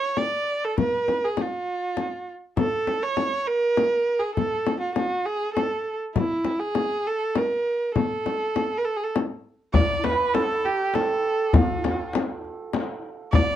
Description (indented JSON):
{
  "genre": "Persian modal ensemble",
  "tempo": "100 BPM",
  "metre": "3/4",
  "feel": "straight",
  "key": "A dastgah chahargah",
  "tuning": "A4 = 440 Hz",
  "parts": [
    { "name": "clear kamancheh", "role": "melody", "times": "0.0-13.6 s", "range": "E4 to D5", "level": "-24 LUFS", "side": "right 2 dB", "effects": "none" },
    { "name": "frame drum", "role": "percussion", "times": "0.2-13.5 s", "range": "none", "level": "-25 LUFS", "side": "left 5 dB", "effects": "none" },
    { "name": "santur", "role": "second line", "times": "9.7-13.6 s", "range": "F4+45c to D5", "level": "-31 LUFS", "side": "right 5 dB", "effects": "none" },
    { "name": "tombak", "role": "percussion", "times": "9.7-13.5 s", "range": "none", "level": "-24 LUFS", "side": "left 1 dB", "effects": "none" }
  ],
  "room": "moderate studio ambience, RT60 0.5 s",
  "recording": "dark, warm production",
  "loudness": "-22 LUFS",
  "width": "side -11 dB against mid",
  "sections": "0.0-9.7 A section; 9.7-13.6 B section",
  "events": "none",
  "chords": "none",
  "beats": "0.18 | 0.78 1.38 1.98 | 2.57 3.17 3.77 | 4.36 4.96 5.56 | 6.16 6.75 7.35 | 7.95 8.55 9.14 | 9.74 10.34 10.94 | 11.54 12.14 12.73 | 13.33"
}